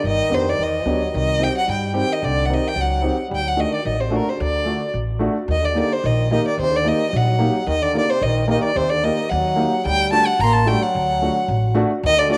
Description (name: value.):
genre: klezmer.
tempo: 110 BPM.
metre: 2/4.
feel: straight.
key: unclear.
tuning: A4 = 441 Hz.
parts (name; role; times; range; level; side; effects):
rich violin; melody; 0.0-12.4 s; Bb4 to C6; -23 LUFS; equal; none.
clear trombone; second line; 0.0-12.4 s; Bb2 to Bb3; -29 LUFS; equal; none.
upright bass; bass; 0.0-12.4 s; G1 to G2; -25 LUFS; equal; none.
dark upright piano; accompaniment; 0.3-12.4 s; A3 to G4; -26 LUFS; equal; none.
room: wet spring reverb, RT60 2.4 s.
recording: none.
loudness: -20 LUFS.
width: mono.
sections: 0.0-5.5 A section; 5.5-12.4 B section.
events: none.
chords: 0.0 G7; 1.1 Cm; 3.3 D; 5.5 Eb; 9.9 D.